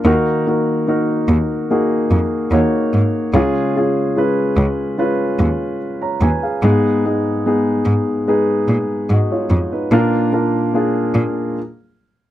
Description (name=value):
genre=pop ballad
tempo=73 BPM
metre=4/4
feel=straight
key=Eb minor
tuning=A4 = 439 Hz
part: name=warm concert grand piano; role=accompaniment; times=0.0-11.6 s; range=Ab2 to Bb5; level=-16 LUFS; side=equal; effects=none
part: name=rich cello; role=bass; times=0.1-11.2 s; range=Db2 to Bb2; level=-16 LUFS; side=equal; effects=none
room=light reverb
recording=dry, close 1970s-style studio recording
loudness=-15 LUFS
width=side -13 dB against mid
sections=0.0-12.3 A section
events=stop 11.6-12.3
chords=0.1 Ebm; 3.3 Db; 6.6 Abm; 9.9 Bb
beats=| 0.06 0.88 1.70 2.52 | 3.35 4.17 4.99 5.81 | 6.63 7.46 8.28 9.10 | 9.92 10.74 11.56